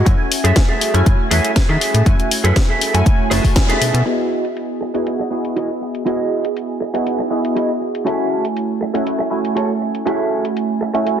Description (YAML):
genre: filtered disco house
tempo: 120 BPM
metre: 4/4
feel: straight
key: E major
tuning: A4 = 440 Hz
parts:
  - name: funky polysynth comp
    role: accompaniment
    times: 0.0-11.2 s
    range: A3 to G#5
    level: -20 LUFS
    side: right 1 dB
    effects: chorus, phaser, sidechain pumping, low-pass filter
  - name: electric guitar through a small old amp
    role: riff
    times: 0.0-11.1 s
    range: E4 to E5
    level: -22 LUFS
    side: right 2 dB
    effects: lush chorus, sidechain pumping, low-pass filter
  - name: slap-like FM bass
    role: bass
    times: 0.0-4.0 s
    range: F#1 to D#3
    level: -15 LUFS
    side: equal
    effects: sidechain pumping, low-pass filter
  - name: electronic kick drum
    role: drums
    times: 0.1-3.7 s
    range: none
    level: -14 LUFS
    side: equal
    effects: none
  - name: house drum kit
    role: drums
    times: 0.1-11.2 s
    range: hi-hat, snare drum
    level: -22 LUFS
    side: left 2 dB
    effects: sidechain pumping on hats, low-pass filter on hats, low-pass filter on snare, low-pass filter on room
room: moderate lush hall reverb, RT60 2.0 s, digital ambience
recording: dense, heavily limited modern master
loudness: -15 LUFS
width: side -9 dB against mid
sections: 0.0-4.1 A section; 4.1-11.2 B section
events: band accent 3.6; filter sweep 4.1-11.2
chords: 0.1 F#m9; 4.1 Emaj9; 8.1 F#m9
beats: | 0.06 0.56 1.06 1.56 | 2.06 2.56 3.06 3.56 | 4.06 4.56 5.06 5.56 | 6.06 6.56 7.06 7.56 | 8.06 8.56 9.06 9.56 | 10.06 10.56 11.06